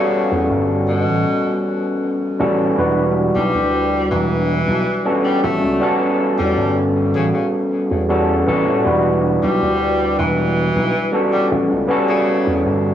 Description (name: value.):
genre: vaporwave.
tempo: 79 BPM.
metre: 4/4.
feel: straight.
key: unclear.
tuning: A4 = 440 Hz.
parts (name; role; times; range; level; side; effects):
bright tenor saxophone; melody; 0.0-12.7 s; B2 to A3; -22 LUFS; left 3 dB; cassette tape, analog delay.
overdriven tine electric piano; accompaniment; 0.0-12.9 s; G3 to B4; -17 LUFS; equal; analog chorus, cassette tape, analog delay.
slap bass with an envelope filter; bass; 0.3-12.9 s; E1 to A2; -21 LUFS; right 1 dB; none.
room: moderate spring reverb, RT60 1.4 s, small room reverb.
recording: home recording on cassette, small room ambience.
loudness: -15 LUFS.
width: side -10 dB against mid.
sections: 0.0-12.9 A section.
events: none.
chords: 0.0 A13; 2.8 Em9; 5.4 A13; 8.9 Em9; 11.5 A13.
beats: 0.50 1.26 2.02 | 2.78 3.54 4.30 5.06 | 5.82 6.58 7.34 8.10 | 8.86 9.62 10.38 11.13 | 11.89 12.65.